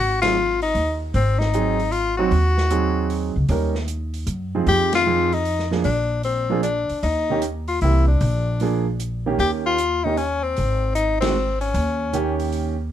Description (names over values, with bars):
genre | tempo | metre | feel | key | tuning
jazz, small-group swing and bop | 153 BPM | 3/4 | swing 66% on 8ths | unclear | A4 = 442 Hz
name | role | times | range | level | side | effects
clear tenor saxophone | melody | 0.0-12.4 s | C4 to G4 | -22 LUFS | left 4 dB | plate reverb
upright bass | bass | 0.0-12.9 s | Ab1 to Gb2 | -23 LUFS | equal | none
warm concert grand piano | accompaniment | 0.2-12.7 s | Eb3 to Bb4 | -24 LUFS | right 6 dB | none
open jazz drum kit | drums | 0.2-12.7 s | hi-hat, ride cymbal, snare drum | -34 LUFS | right 2 dB | none
room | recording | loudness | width
light reverb | close, detailed microphones | -19 LUFS | side -11 dB against mid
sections
0.0-9.4 A section; 9.4-12.9 A section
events
band accent 0.2, 4.9, 11.2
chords
0.0 Ab7; 3.5 Eb7; 4.7 Fm7; 5.9 Bb; 7.0 Eb7; 7.8 C7; 8.2 Bb7; 9.4 Eb7; 10.6 Ab; 11.7 Eb7